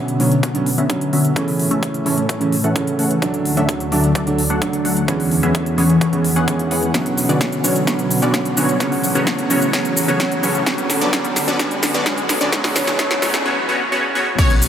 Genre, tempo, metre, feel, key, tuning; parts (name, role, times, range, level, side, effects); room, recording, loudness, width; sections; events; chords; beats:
EDM, festival progressive house; 129 BPM; 4/4; straight; A major; A4 = 440 Hz
felt-muted upright piano; accompaniment; 0.0-13.4 s; C#3 to D4; -20 LUFS; right 2 dB; sidechain pumping, analog delay
lush unison pad; sustained chords; 0.0-14.7 s; D2 to D5; -23 LUFS; left 1 dB; chorus, sidechain pumping
riser; sound effects; 4.7-13.5 s; -31 LUFS; equal
big-room dance drum kit; drums; 0.1-14.7 s; crash cymbal, hi-hat, shaker, snare drum; -22 LUFS; equal
supersaw stab; riff; 0.2-14.5 s; C#3 to F#5; -21 LUFS; left 1 dB; phaser, sidechain pumping, low-pass filter, analog delay
electronic kick drum; drums; 0.4-14.5 s; -22 LUFS; equal; high-pass filter on kick, high-pass filter on room
wide unison pluck; arpeggios; 14.4-14.5 s; C#5; -21 LUFS; left 1 dB; lush chorus, sidechain pumping, analog delay
wide detuned saw bass; bass; 14.4-14.7 s; B1; -24 LUFS; left 1 dB
wet cathedral reverb, RT60 6.9 s; dreamy mix soaked in reverb, high-pass filter; -15 LUFS; side -9 dB against mid
0.0-14.4 A section
build-up 0.0-14.4; filter sweep on supersaw synth 0.0-14.4; filter sweep on analog synth pad 0.0-14.4; filter sweep 0.0-14.4; drum fill 6.9-13.5
0.0 Bmadd9; 1.4 A; 3.2 D; 5.1 E6; 6.9 Bmadd9; 8.8 A; 10.7 D; 12.5 E6
0.43 0.90 | 1.36 1.83 2.29 2.76 | 3.22 3.69 4.15 4.62 | 5.08 5.55 6.01 6.48 | 6.94 7.41 7.87 8.34 | 8.80 9.27 9.73 10.20 | 10.66 11.13 11.60 12.06 | 12.53 12.99 13.46 13.92 | 14.38